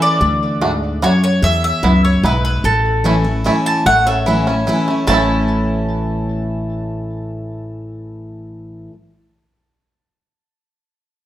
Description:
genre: bluegrass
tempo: 148 BPM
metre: 3/4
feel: straight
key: A major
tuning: A4 = 440 Hz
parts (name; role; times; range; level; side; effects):
- mandolin; melody; 0.0-8.9 s; A4 to A5; -18 LUFS; equal; plate reverb, tape echo
- picked steel-string acoustic guitar; accompaniment; 0.0-8.9 s; E2 to E4; -19 LUFS; left 1 dB; none
- upright bass; bass; 0.2-8.9 s; A1 to E2; -21 LUFS; equal; none
- bluegrass banjo; arpeggios; 0.6-8.9 s; A3 to A4; -20 LUFS; right 2 dB; none
room: wet large studio reverb, RT60 0.9 s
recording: none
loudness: -13 LUFS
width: side -13 dB against mid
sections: 0.0-3.9 A section; 3.9-5.1 B section; 5.1-7.5 C section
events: none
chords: 0.2 D; 1.4 E; 2.6 A

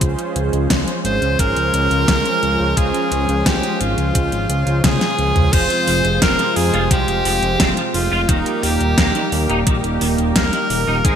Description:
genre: synthwave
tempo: 87 BPM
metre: 4/4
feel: straight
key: F minor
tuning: A4 = 439 Hz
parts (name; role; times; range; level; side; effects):
- warm analog pad; sustained chords; 0.0-11.2 s; C3 to G4; -24 LUFS; right 2 dB; chorus, sidechain pumping
- mellow synth brass; stabs; 0.0-11.2 s; Ab3 to C5; -25 LUFS; right 3 dB; chorus, cassette tape, digital delay
- fat analog bass; bass; 0.0-11.2 s; Eb1 to F2; -21 LUFS; left 1 dB; sidechain pumping
- electronic kick drum; drums; 0.0-11.2 s; none; -19 LUFS; equal; none
- pop drum kit; drums; 0.0-11.2 s; crash cymbal, hi-hat, snare drum, toms; -21 LUFS; equal; overdrive, gated reverb
- clear tenor saxophone; melody; 1.1-11.2 s; Eb4 to C5; -20 LUFS; equal; ping-pong delay
- clean electric guitar; riff; 5.5-11.1 s; Eb3 to F4; -27 LUFS; equal; ensemble chorus, digital delay
room: moderate lush hall reverb, RT60 2.5 s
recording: bright 1980s-style digital production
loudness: -15 LUFS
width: side -8 dB against mid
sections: 0.0-5.5 A section; 5.5-11.2 B section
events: drum fill 4.8-5.5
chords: 0.0 Dbmaj7; 5.5 Fm; 8.3 Eb

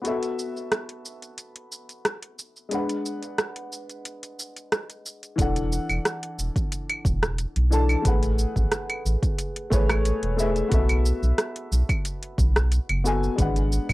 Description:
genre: sunset chillout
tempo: 90 BPM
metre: 4/4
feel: straight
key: unclear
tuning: A4 = 440 Hz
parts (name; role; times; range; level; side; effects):
- dark baby grand piano; accompaniment; 0.0-13.9 s; E3 to A5; -29 LUFS; left 2 dB; auto-pan, cassette tape, analog delay
- deep house drum kit; drums; 0.0-13.9 s; cabasa, claves, hi-hat, rim click; -28 LUFS; right 1 dB; overdrive
- round analog bass; bass; 5.4-13.9 s; E1 to B1; -23 LUFS; equal; none
- electronic kick drum; drums; 5.4-13.9 s; none; -26 LUFS; equal; overdrive
room: moderate small room ambience, RT60 0.5 s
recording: home recording on cassette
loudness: -22 LUFS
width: side -19 dB against mid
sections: 0.0-5.4 A section; 5.4-13.9 B section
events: none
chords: 0.1 B7sus4; 2.7 G#m7b5; 5.4 E9sus4; 8.1 Amaj9; 10.7 B7sus4; 13.4 G#m7b5

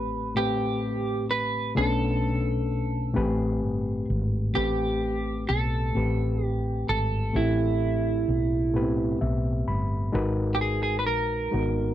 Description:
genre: slow six-eight R&B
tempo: 43 BPM (dotted quarters)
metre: 6/8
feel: straight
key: A minor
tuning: A4 = 440 Hz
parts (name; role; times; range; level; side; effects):
- electric guitar at the edge of break-up; melody; 0.0-11.9 s; E4 to B4; -28 LUFS; right 3 dB; lush chorus, slapback echo
- overdriven reed electric piano; accompaniment; 0.0-11.9 s; A2 to B5; -28 LUFS; left 2 dB; none
- woody fretless electric bass; bass; 0.0-11.9 s; G1 to B1; -28 LUFS; equal; none
room: little or no reverb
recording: dry, close 1970s-style studio recording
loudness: -24 LUFS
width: side -12 dB against mid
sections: 0.0-4.5 A section; 4.5-11.9 B section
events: reed electric piano fill 8.7-10.1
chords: 0.0 Am9; 1.8 Bm9; 3.1 Am9; 10.1 G#m9

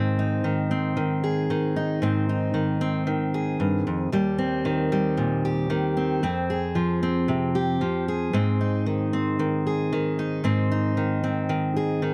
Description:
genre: folk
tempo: 114 BPM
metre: 4/4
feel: straight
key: unclear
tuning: A4 = 440 Hz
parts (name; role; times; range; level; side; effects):
- fingerpicked steel-string acoustic guitar; solo; 0.0-12.1 s; Eb2 to Ab4; -25 LUFS; equal; none
room: little or no reverb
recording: close, detailed microphones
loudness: -25 LUFS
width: mono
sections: 0.0-12.1 A section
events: none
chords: 0.0 Ab; 4.1 Eb6; 6.2 Fm; 8.3 Ab

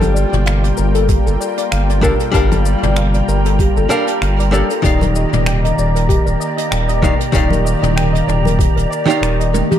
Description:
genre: sunset chillout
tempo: 96 BPM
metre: 4/4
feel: swing 56% on 16ths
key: unclear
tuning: A4 = 440 Hz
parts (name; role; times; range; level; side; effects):
- archtop guitar, miked and amplified; accompaniment; 0.0-9.8 s; Eb3 to A5; -19 LUFS; moving between left 4 dB and right 3 dB; auto-pan, digital delay
- lush unison pad; sustained chords; 0.0-9.8 s; Eb3 to G5; -22 LUFS; equal; chorus
- soft round pluck; arpeggios; 0.0-9.8 s; G4 to G5; -22 LUFS; left 3 dB; analog chorus, digital delay
- round analog bass; bass; 0.0-9.6 s; Eb1 to G1; -16 LUFS; equal; none
- jazz brush drum kit; drums; 0.0-9.8 s; finger snaps, hi-hat, shaker, toms; -23 LUFS; left 1 dB; none
- congas; percussion; 0.0-8.6 s; none; -23 LUFS; left 4 dB; none
- wind-like tuned noise texture; texture; 0.7-9.8 s; Bb5; -27 LUFS; right 5 dB; built-in reverb
- electronic kick drum; drums; 1.1-8.7 s; none; -16 LUFS; equal; none
room: light reverb, studio ambience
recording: dark, warm production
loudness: -12 LUFS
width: side -10 dB against mid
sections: 0.0-9.8 A section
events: drum fill 9.5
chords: 0.0 Gm9; 4.8 Ebmaj7

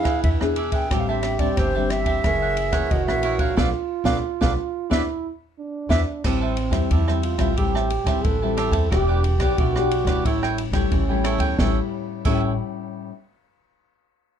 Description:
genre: samba and choro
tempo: 90 BPM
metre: 4/4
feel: straight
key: unclear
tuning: A4 = 439 Hz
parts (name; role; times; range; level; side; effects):
- bright baroque flute; melody; 0.0-6.0 s; C5 to G5; -26 LUFS; equal; none
- mellow trombone; second line; 0.0-12.6 s; C4 to A4; -27 LUFS; right 8 dB; none
- cavaquinho; accompaniment; 0.0-12.5 s; D4 to A5; -29 LUFS; right 6 dB; none
- nylon-string guitar; accompaniment; 0.0-13.1 s; F#2 to G#4; -27 LUFS; left 6 dB; none
- upright bass; bass; 0.0-12.6 s; E1 to E2; -24 LUFS; equal; none
- open jazz drum kit; drums; 0.1-12.4 s; crash cymbal, kick drum, ride cymbal, rim click, snare drum; -25 LUFS; equal; none
room: light reverb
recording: dark, warm production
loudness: -19 LUFS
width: side -8 dB against mid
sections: 0.0-6.2 A section; 6.2-11.6 B section; 11.6-14.3 C section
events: band accent 3.6-6.2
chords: 0.0 E7; 0.9 Am7; 2.2 F#7; 3.6 Bm7b5; 4.9 E5; 6.2 Am7; 8.9 Em7; 10.3 A7

